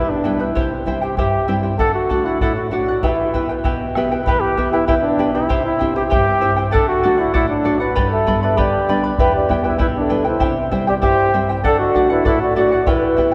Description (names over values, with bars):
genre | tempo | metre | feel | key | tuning
andean folk, Andean ensemble | 98 BPM | 2/4 | straight | E minor | A4 = 440 Hz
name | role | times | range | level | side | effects
warm flugelhorn | melody | 0.0-13.3 s | D4 to B4 | -21 LUFS | equal | none
charango | accompaniment | 0.0-13.3 s | E4 to B5 | -24 LUFS | equal | none
nylon-string guitar | accompaniment | 0.0-13.3 s | E2 to G4 | -25 LUFS | equal | none
bombo | percussion | 0.6-13.3 s | none | -26 LUFS | equal | none
mellow large quena | second line | 8.1-13.3 s | A4 to G5 | -24 LUFS | equal | none
room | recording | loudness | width
wet church reverb, RT60 3.3 s | recorded in a church or concert hall | -17 LUFS | mono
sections
0.0-4.3 A section; 4.3-13.3 A section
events
none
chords
0.0 Em; 0.6 C; 1.8 D; 3.0 Em; 5.5 C; 6.7 D; 8.0 G; 9.2 Em; 10.4 C; 11.6 D